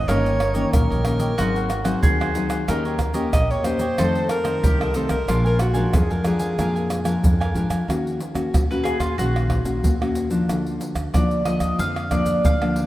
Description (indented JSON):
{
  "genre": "samba and choro",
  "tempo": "92 BPM",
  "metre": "4/4",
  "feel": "straight",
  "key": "Eb minor",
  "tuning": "A4 = 441 Hz",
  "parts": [
    { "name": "breathy alto saxophone", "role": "melody", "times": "0.0-7.2 s", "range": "Gb4 to Eb5", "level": "-26 LUFS", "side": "equal", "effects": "none" },
    { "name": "mandolin", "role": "second line", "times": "0.0-12.9 s", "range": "F4 to F5", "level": "-28 LUFS", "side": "equal", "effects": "none" },
    { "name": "cavaquinho", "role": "accompaniment", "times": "0.0-7.9 s", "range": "D4 to Ab5", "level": "-32 LUFS", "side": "right 3 dB", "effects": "none" },
    { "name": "nylon-string guitar", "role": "accompaniment", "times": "0.0-12.9 s", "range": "F2 to G4", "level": "-24 LUFS", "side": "left 2 dB", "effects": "none" },
    { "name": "upright bass", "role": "bass", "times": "0.0-12.9 s", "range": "G1 to Ab2", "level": "-26 LUFS", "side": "equal", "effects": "none" },
    { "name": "tube shaker, surdo, pandeiro and tamborim", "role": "percussion", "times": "0.1-12.9 s", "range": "none", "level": "-23 LUFS", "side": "right 1 dB", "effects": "none" }
  ],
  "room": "moderate plate reverb, RT60 3.5 s",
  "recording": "rough home demo mix",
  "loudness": "-19 LUFS",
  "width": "side -15 dB against mid",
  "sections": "0.0-7.9 A section; 7.9-12.9 B section",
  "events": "mandolin solo 7.9-12.9",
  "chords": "0.1 Eb7/G; 1.4 Ab7; 2.7 Eb7; 4.0 F7; 5.3 Bb7; 7.9 Ebm7; 10.5 Bb/D"
}